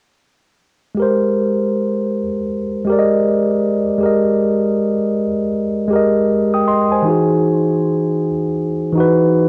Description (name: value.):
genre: hip hop.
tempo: 79 BPM.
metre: 4/4.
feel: swing 63% on 16ths.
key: Ab major.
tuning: A4 = 440 Hz.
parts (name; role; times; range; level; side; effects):
mellow tine electric piano; accompaniment; 0.9-9.5 s; E3 to Eb6; -16 LUFS; equal; low-pass filter.
room: moderate plate reverb, RT60 3.5 s.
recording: worn, warbling old tape, cassette tape, warbly pitch drift.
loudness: -17 LUFS.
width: mono.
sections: 1.0-9.5 A section.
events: none.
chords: 1.0 Abmaj9; 7.1 Emaj9.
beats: | 0.98 1.74 2.50 3.25 | 4.01 4.77 5.53 6.29 | 7.05 7.81 8.57 9.33.